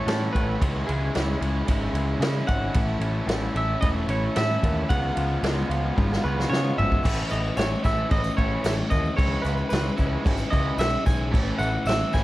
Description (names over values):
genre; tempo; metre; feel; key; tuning
indie rock; 112 BPM; 4/4; straight; A major; A4 = 437 Hz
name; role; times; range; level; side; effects
twangy electric guitar; melody; 0.0-12.2 s; G#4 to G#5; -30 LUFS; right 1 dB; tape echo
biting overdriven guitar; riff; 0.0-12.2 s; A2 to F4; -29 LUFS; left 3 dB; none
overdriven electric guitar; riff; 0.0-12.2 s; A2 to F4; -33 LUFS; right 4 dB; analog chorus
growling picked electric bass; bass; 0.1-12.2 s; E1 to C#3; -27 LUFS; equal; overdrive
vintage drum kit; drums; 0.1-12.2 s; crash cymbal, kick drum, ride cymbal, snare drum, toms; -26 LUFS; equal; none
tambourine; percussion; 7.0-12.2 s; none; -49 LUFS; left 5 dB; none
room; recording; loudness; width
light reverb; vinyl crackle; -22 LUFS; side -16 dB against mid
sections
0.0-7.0 A section; 7.0-12.2 B section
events
drum fill 6.0-7.0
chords
0.0 A; 0.6 C#m; 2.8 A6; 4.9 C#7sus4; 7.0 A; 9.2 C#m7; 11.3 A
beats
0.08 | 0.62 1.15 1.69 2.22 | 2.76 3.29 3.83 4.36 | 4.89 5.43 5.96 6.50 | 7.04 7.57 8.11 8.64 | 9.18 9.72 10.25 10.79 | 11.33 11.86